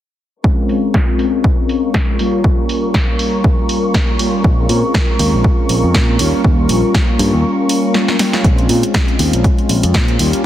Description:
filtered disco house; 120 BPM; 4/4; swing 56% on 16ths; Bb dorian; A4 = 441 Hz
mellow synth brass; accompaniment; 0.4-10.5 s; G3 to F4; -17 LUFS; left 1 dB; chorus, phaser, sidechain pumping, low-pass filter
rich chamber violin section; sustained chords; 0.4-8.5 s; Bb4 to Db6; -23 LUFS; equal; vintage 12-bit sampler grit, sidechain pumping, low-pass filter
electronic kick drum; drums; 0.4-10.1 s; -15 LUFS; equal
tambourine; percussion; 0.4-10.5 s; barely audible
punchy analog drum machine; drums; 0.7-10.4 s; hi-hat, snare drum; -20 LUFS; right 1 dB; sidechain pumping on hats, low-pass filter on hats, low-pass filter on snare, low-pass filter on room
modern bright fingered electric bass; bass; 4.4-10.3 s; Bb1 to Bb2; -16 LUFS; equal; tube saturation, sidechain pumping, low-pass filter
light reverb, digital ambience; heavily compressed radio sound; -12 LUFS; side -12 dB against mid
0.4-8.4 A section; 8.4-10.5 B section
filter sweep on drum 0.4-8.4; filter sweep 0.4-8.4, 8.4-10.5; kick drops out 7.4-8.4; drum fill 7.9-8.4
0.4 Bbm7; 2.2 Gm7b5; 4.4 Bbm7; 6.2 Eb9; 8.4 Bbm7

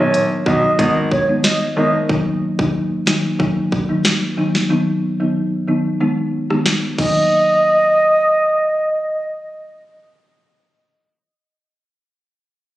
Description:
dancehall; 92 BPM; 4/4; straight; Eb minor; A4 = 438 Hz
wooden flute; melody; 0.0-1.9, 7.0-9.2 s; Db5 to D#5; -15 LUFS; right 1 dB; ping-pong delay
folk marimba with medium mallets; accompaniment; 0.0-10.7 s; D#3 to D#4; -18 LUFS; equal
clear baby grand piano; bass; 0.0-1.9 s; Gb1 to B1; -21 LUFS; equal
island pop drum kit; drums; 0.1-7.1 s; crash cymbal, hi-hat, kick drum, rim click, snare drum; -19 LUFS; equal; vintage 12-bit sampler grit
light reverb, studio reverb; recorded on a phone in the room, compression; -14 LUFS; side -15 dB against mid
0.0-7.3 A section; 7.3-9.9 B section
0.0 B; 0.8 Abm; 2.1 Ebm; 4.7 B; 6.0 Abm; 7.0 Ebm

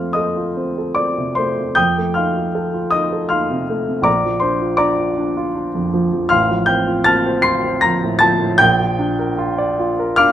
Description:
classical, romantic nocturne for solo piano; 79 BPM; 3/4; uneven beats, rubato; Bb major; A4 = 439 Hz
warm baby grand piano; solo; 0.0-10.3 s; A1 to C7; -15 LUFS; equal
light reverb; close, detailed microphones; -15 LUFS; side -11 dB against mid
0.0-10.3 A section
0.0 F; 1.8 F7; 4.1 Bb; 6.3 F/A; 8.6 Bb

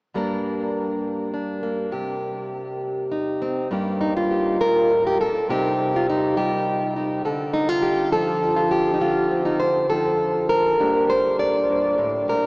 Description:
folk, solo fingerstyle acoustic guitar; 67 BPM (dotted quarters); 6/8; straight; G minor; A4 = 435 Hz
fingerpicked plugged-in steel-string acoustic guitar; solo; 0.1-12.5 s; G2 to D5; -19 LUFS; equal; tape echo
wet huge ambient reverb, RT60 7.7 s; dreamy mix soaked in reverb, small speaker sound; -19 LUFS; side -34 dB against mid
0.1-3.7 A section; 3.7-12.5 B section
0.1 Gm; 1.9 Cm; 3.7 Gm; 5.5 Cm; 7.2 Dm7; 10.8 Gm

